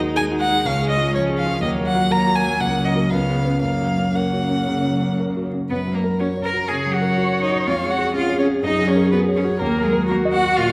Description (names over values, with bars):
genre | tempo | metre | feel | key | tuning
quick classical-period movement for piano quartet | 122 BPM | 4/4 | rubato | F# major | A4 = 440 Hz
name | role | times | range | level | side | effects
rich cello | second line | 0.0-10.7 s | C#3 to A#4 | -26 LUFS | equal | none
warm concert grand piano | accompaniment | 0.0-10.7 s | C#2 to D#5 | -24 LUFS | equal | none
warm viola | accompaniment | 0.0-10.7 s | A#3 to C#5 | -27 LUFS | equal | none
rich violin | melody | 0.2-10.7 s | G#4 to A#5 | -27 LUFS | equal | none
room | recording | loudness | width
wet recital hall reverb, RT60 1.7 s | none | -20 LUFS | mono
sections
0.0-5.7 A section; 5.7-10.7 B section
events
none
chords
0.0 G#5/D#; 0.7 C#; 1.6 D#m; 2.6 F#/C#; 3.1 C#7; 3.6 F#; 7.7 C#/E#; 8.6 F#; 9.6 D#m